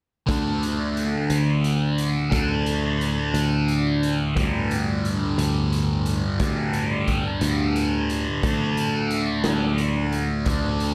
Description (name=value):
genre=psychedelic rock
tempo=59 BPM (dotted quarters)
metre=6/8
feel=straight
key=unclear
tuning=A4 = 439 Hz
part: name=thick fuzz guitar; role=riff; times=0.3-10.9 s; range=G2 to D4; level=-26 LUFS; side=equal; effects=distortion, phaser
part: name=picked electric bass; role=bass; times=0.3-10.9 s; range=D2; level=-28 LUFS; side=equal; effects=none
part: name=deep rumbling drone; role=drone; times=1.3-10.9 s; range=D2 to A2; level=-35 LUFS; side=equal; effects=built-in reverb
part: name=raw garage drum kit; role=drums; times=0.3-10.9 s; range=hi-hat, kick drum, snare drum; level=-33 LUFS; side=equal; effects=none
room=little or no reverb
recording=none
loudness=-23 LUFS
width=mono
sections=0.3-10.9 A section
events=none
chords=0.3 D5; 4.4 Gsus2/D; 8.4 D5